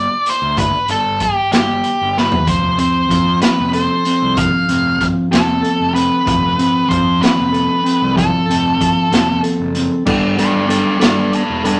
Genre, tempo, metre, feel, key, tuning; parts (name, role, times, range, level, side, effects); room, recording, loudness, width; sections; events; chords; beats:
psychedelic rock; 63 BPM (dotted quarters); 6/8; straight; A4 = 440 Hz
octave-fuzz lead guitar; melody; 0.0-11.8 s; G4 to F5; -19 LUFS; equal; distortion
fuzz fingered electric bass; bass; 0.0-11.8 s; E1 to F2; -27 LUFS; equal; overdrive
raw garage drum kit; drums; 0.3-11.8 s; crash cymbal, hi-hat, kick drum, snare drum, toms; -22 LUFS; equal
mellow electric guitar; riff; 2.5-11.8 s; F3 to A4; -18 LUFS; equal
moderate studio ambience, RT60 0.5 s; -15 LUFS; mono
0.0-10.1 A section; 10.1-11.8 B section
drum fill 2.2-2.5; lead electric guitar solo 10.1-11.8
0.0 G; 2.5 F; 10.1 Gadd9
| 0.58 1.53 | 2.48 3.43 | 4.38 5.32 | 6.27 7.22 | 8.17 9.12 | 10.07 11.02